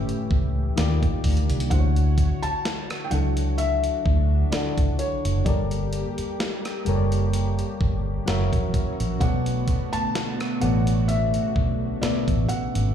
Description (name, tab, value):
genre	contemporary R&B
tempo	64 BPM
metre	4/4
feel	swing 54% on 16ths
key	unclear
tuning	A4 = 440 Hz
part	felt-muted upright piano	melody	0.0-12.9 s	C#5 to A5	-30 LUFS	left 2 dB	digital delay
part	soft electric-piano-like synth keys	accompaniment	0.0-12.9 s	A2 to E5	-28 LUFS	left 5 dB	chorus
part	lush unison pad	sustained chords	0.0-12.9 s	C#3 to C#5	-32 LUFS	right 3 dB	chorus, phaser
part	vintage muted fingered electric bass	bass	0.0-12.9 s	F#1 to Eb2	-23 LUFS	right 1 dB	none
part	dusty soul sampler-style drum kit	drums	0.1-12.9 s	hi-hat, kick drum, rim click, snare drum	-26 LUFS	right 1 dB	none
room	little or no reverb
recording	played on a big sound system in a bare room, large studio reverb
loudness	-21 LUFS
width	side -9 dB against mid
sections	0.0-12.9 A section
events	none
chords	0.0 A7; 0.8 Ebmaj7; 1.7 Dmaj7; 5.5 Gmadd9; 8.3 F#7; 9.2 Bm7